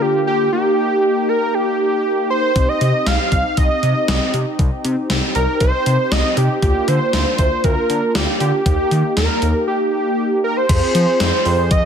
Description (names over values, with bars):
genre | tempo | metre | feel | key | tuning
synth-pop | 118 BPM | 4/4 | straight | C minor | A4 = 437 Hz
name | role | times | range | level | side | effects
wide unison lead | melody | 0.0-11.9 s | G4 to F5 | -18 LUFS | right 2 dB | ping-pong delay
mellow synth brass | accompaniment | 0.0-11.9 s | D3 to Ab4 | -22 LUFS | left 2 dB | chorus
smooth synth bass | bass | 2.6-11.8 s | C2 to F3 | -19 LUFS | equal | none
gated 80s digital drum machine | drums | 2.6-11.8 s | crash cymbal, hi-hat, kick drum, snare drum | -19 LUFS | left 1 dB | gated reverb, gated reverb snare
room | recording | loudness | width
light reverb, digital ambience | none | -14 LUFS | side -7 dB against mid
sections
0.0-10.7 A section; 10.7-11.9 B section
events
none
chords
0.0 Bb/D; 0.5 Eb; 2.6 Cm; 6.6 Bb/D; 8.7 Eb; 10.7 Fm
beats
0.01 | 0.52 1.03 1.54 2.05 | 2.56 3.07 3.58 4.08 | 4.59 5.10 5.61 6.12 | 6.62 7.13 7.64 8.15 | 8.66 9.17 9.68 10.19 | 10.69 11.20 11.71